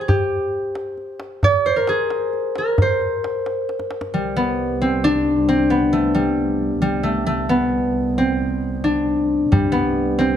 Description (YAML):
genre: Persian modal ensemble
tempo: 89 BPM (dotted quarters)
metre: 6/8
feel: straight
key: C dastgah homayun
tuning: A4 = 441 Hz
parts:
  - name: concert harp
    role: melody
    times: 0.0-10.4 s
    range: G3 to Db5+45c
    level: -18 LUFS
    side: left 1 dB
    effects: none
  - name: tombak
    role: percussion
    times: 0.1-4.1, 9.5-10.3 s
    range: none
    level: -21 LUFS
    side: equal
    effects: none
  - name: dark double bass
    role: drone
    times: 4.2-10.4 s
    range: C2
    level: -27 LUFS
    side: right 2 dB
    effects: none
room: light reverb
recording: dark, warm production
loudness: -17 LUFS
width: side -9 dB against mid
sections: 0.0-4.1 A section; 4.1-10.4 B section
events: drum fill 3.7-4.1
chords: none